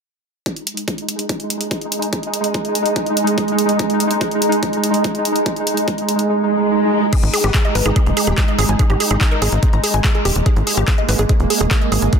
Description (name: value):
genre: psychedelic trance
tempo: 144 BPM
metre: 4/4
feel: straight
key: unclear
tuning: A4 = 440 Hz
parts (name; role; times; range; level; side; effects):
- pulsing gated texture; sustained chords; 0.8-12.2 s; G#3 to D#4; -19 LUFS; right 2 dB; chorus, built-in reverb, sidechain pumping
- drum and bass drum kit; drums; 0.5-12.2 s; crash cymbal, handclaps, hi-hat; -23 LUFS; equal; overdrive
- electronic kick drum; drums; 0.5-12.2 s; none; -18 LUFS; equal; overdrive, high-pass filter on kick, high-pass filter on room
- granular cloud pad; texture; 1.7-6.3 s; G#4 to G#5; -27 LUFS; equal; built-in reverb, sidechain pumping
- swell; sound effects; 6.4-7.1 s; none; -20 LUFS; right 1 dB; none
- woody wave-folded pluck; riff; 7.1-12.2 s; G4 to A#5; -22 LUFS; moving between left 4 dB and right 7 dB; chorus, auto-pan, sidechain pumping, tape echo
- tight sequencer bass; bass; 7.2-12.1 s; D#1 to G#1; -18 LUFS; equal; none
- metallic wobble bass; second line; 7.4-9.7 s; B3 to G4; -31 LUFS; left 6 dB; none
room: light reverb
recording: dense, heavily limited modern master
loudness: -15 LUFS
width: side -6 dB against mid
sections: 0.5-7.1 A section; 7.1-12.2 B section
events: fade-in on ambient pad 0.5-7.1; swell 6.4-7.1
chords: 0.5 G#5